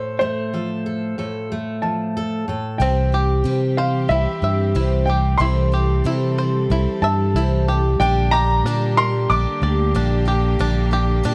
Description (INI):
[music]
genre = folk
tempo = 92 BPM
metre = 4/4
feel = straight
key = unclear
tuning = A4 = 440 Hz
[part]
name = warm upright piano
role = melody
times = 0.0-11.3 s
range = C5 to D6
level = -26 LUFS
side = equal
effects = none
[part]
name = fingerpicked steel-string acoustic guitar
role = accompaniment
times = 0.0-2.8 s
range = A2 to A4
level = -26 LUFS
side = equal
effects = none
[part]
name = picked twelve-string acoustic guitar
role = accompaniment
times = 2.8-11.3 s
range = Bb2 to G4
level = -28 LUFS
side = equal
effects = none
[part]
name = warm chamber string section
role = sustained chords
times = 2.8-11.3 s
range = D3 to A4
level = -31 LUFS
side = equal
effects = none
[part]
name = bluegrass banjo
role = arpeggios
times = 2.8-11.3 s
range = C4 to E5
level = -29 LUFS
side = equal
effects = analog delay
[part]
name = fingered electric bass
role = bass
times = 2.8-11.3 s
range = Bb1 to C3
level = -21 LUFS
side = equal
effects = none
[sound]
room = light reverb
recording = dark, warm production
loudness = -20 LUFS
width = mono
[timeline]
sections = 0.0-2.8 A section; 2.8-11.3 B section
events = none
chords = 0.0 F/A; 2.8 C; 8.0 Gm/Bb